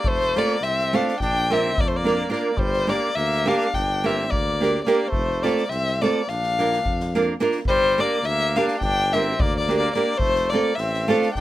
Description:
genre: balkan folk, Balkan wedding band.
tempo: 213 BPM (eighths).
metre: 9/8.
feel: straight.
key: unclear.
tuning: A4 = 441 Hz.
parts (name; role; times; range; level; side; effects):
warm violin; melody; 0.0-11.4 s; C5 to G5; -23 LUFS; left 3 dB; none.
warm trumpet; second line; 0.0-11.4 s; G3 to D4; -29 LUFS; right 2 dB; none.
mellow tuba; bass; 0.0-11.4 s; F1 to F2; -28 LUFS; equal; none.
street-band drum kit; percussion; 0.0-11.4 s; kick drum, snare drum; -29 LUFS; equal; none.
nylon-string guitar; accompaniment; 0.4-11.3 s; A3 to Bb4; -21 LUFS; right 3 dB; none.
room: light reverb.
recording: rough home demo mix.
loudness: -19 LUFS.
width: side -14 dB against mid.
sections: 0.0-11.4 A section.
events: none.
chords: 0.1 F; 1.2 Bb; 2.6 Gm; 5.1 F; 6.2 Bb; 7.7 Gm; 10.2 F.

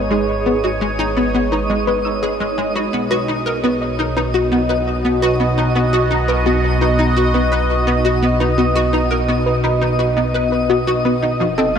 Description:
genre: ambient, sequencer-driven space music.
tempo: 85 BPM.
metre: 4/4.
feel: straight.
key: unclear.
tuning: A4 = 440 Hz.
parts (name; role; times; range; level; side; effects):
sweeping resonant pad; sustained chords; 0.0-11.8 s; B2 to D#5; -19 LUFS; equal; chorus, phaser.
soft round pluck; arpeggios; 0.0-11.8 s; F#4 to E6; -24 LUFS; moving between left 6 dB and right 2 dB; chorus, auto-pan, ping-pong delay.
hollow square pluck; riff; 0.0-11.8 s; F3 to B4; -20 LUFS; equal; ensemble chorus, ping-pong delay.
fat analog bass; bass; 0.0-11.8 s; F1 to B1; -23 LUFS; equal; none.
twinkling granular texture; texture; 0.0-11.8 s; D#4 to D#5; -25 LUFS; right 1 dB; built-in reverb.
room: moderate huge ambient reverb, RT60 8.0 s.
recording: none.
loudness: -14 LUFS.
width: side -7 dB against mid.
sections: 0.0-11.8 A section.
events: none.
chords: 0.0 G#m; 2.9 B.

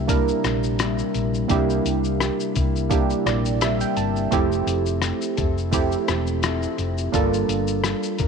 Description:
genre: indie pop, bedroom pop.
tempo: 85 BPM.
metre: 4/4.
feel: swing 55% on 16ths.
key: F major.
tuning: A4 = 440 Hz.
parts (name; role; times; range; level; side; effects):
mellow electric guitar; accompaniment; 0.0-8.3 s; C3 to Bb4; -27 LUFS; left 15 dB; analog chorus, warbly pitch drift.
warm analog keys; accompaniment; 0.0-8.3 s; A3 to A5; -24 LUFS; right 14 dB; chorus, cassette tape.
hollow-body short-scale fingered electric bass; bass; 0.0-8.3 s; E1 to C2; -26 LUFS; equal; none.
lo-fi sampler-style drum kit; drums; 0.1-8.3 s; hi-hat, kick drum, rim click, shaker; -26 LUFS; left 4 dB; none.
room: little or no reverb.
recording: 1960s-style stereo with parts hard left and right.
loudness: -20 LUFS.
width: side -6 dB against mid.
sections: 0.0-8.3 A section.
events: synth keys fill 2.9-4.3.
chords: 0.0 C7; 4.3 Fmaj7; 7.1 Gm7.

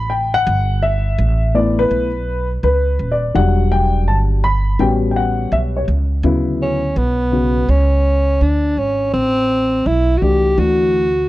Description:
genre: hip hop.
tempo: 83 BPM.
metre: 4/4.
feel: swing 65% on 16ths.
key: D major.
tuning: A4 = 439 Hz.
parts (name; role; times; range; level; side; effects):
dark baby grand piano; accompaniment; 0.0-11.0 s; C#3 to B5; -18 LUFS; left 2 dB; none.
upright bass; bass; 0.0-11.3 s; Eb1 to D2; -17 LUFS; right 1 dB; none.
dark tenor saxophone; melody; 6.6-11.3 s; B3 to G4; -16 LUFS; equal; none.
room: studio ambience.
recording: dry, close 1970s-style studio recording.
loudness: -14 LUFS.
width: side -16 dB against mid.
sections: 0.0-6.2 A section; 6.2-11.3 B section.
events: grand piano solo 0.0-6.2.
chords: 0.5 G69; 3.4 Em7; 4.8 A13; 6.2 Dmaj7; 9.1 Am; 10.6 D.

